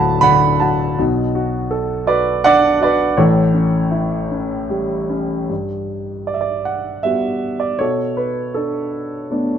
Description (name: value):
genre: classical, lyrical solo piano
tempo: 74-83 BPM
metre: 3/4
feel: rubato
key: unclear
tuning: A4 = 440 Hz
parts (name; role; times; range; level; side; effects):
- warm grand piano; solo; 0.0-9.6 s; D1 to B5; -15 LUFS; right 1 dB; none
room: light reverb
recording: faint mains hum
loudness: -15 LUFS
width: side -8 dB against mid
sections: 0.0-5.5 A section; 5.5-9.6 B section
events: none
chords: 0.0 D; 1.0 Bm7; 3.2 A7; 5.5 Gmaj7; 7.8 Bm7